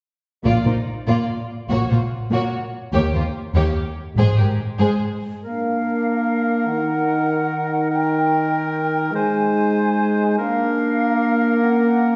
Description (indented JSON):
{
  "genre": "cinematic, heroic adventure film score",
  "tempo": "97 BPM (dotted quarters)",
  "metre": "6/8",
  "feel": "straight",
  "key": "Bb mixolydian",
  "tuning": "A4 = 440 Hz",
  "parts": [
    { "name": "warm symphonic violin section", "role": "melody", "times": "0.4-5.0 s", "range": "Bb4 to D5", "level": "-33 LUFS", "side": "equal", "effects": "none" },
    { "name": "dark studio viola section", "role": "accompaniment", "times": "0.4-5.0 s", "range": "Ab3 to Bb3", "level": "-28 LUFS", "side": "equal", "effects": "none" },
    { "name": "dark symphonic cello section", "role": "bass", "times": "0.4-4.9 s", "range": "Eb2 to Bb2", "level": "-25 LUFS", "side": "equal", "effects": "none" },
    { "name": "warm studio double bass section", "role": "bass", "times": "0.4-4.4 s", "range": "Ab1 to Eb2", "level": "-24 LUFS", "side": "equal", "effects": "none" },
    { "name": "warm symphonic violin section", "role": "second line", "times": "0.5-5.0 s", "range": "Eb4 to Ab4", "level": "-30 LUFS", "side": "equal", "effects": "none" },
    { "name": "warm oboe", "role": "second line", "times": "5.4-12.2 s", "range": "Bb4 to C5", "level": "-28 LUFS", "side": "equal", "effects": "none" },
    { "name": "mellow French horn section", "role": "sustained chords", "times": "5.4-12.2 s", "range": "Eb3 to Bb3", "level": "-22 LUFS", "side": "equal", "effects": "none" },
    { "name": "dark clarinet", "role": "second line", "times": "5.5-12.2 s", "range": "Db4 to Eb4", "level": "-28 LUFS", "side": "equal", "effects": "none" },
    { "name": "flute section", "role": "second line", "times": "5.5-12.2 s", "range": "F5 to Ab5", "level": "-26 LUFS", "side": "equal", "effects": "none" }
  ],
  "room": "wet scoring stage reverb, RT60 1.6 s",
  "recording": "heard from further back in the room, nothing above 7.8 kHz",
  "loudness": "-20 LUFS",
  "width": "mono",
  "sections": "0.4-5.4 A section; 5.4-12.2 B section",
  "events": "build-up 5.4-12.2",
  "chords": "0.4 Bb; 2.9 Eb7; 4.2 Ab; 5.4 Bb; 6.7 Ebm; 9.2 Ab; 10.4 Bb"
}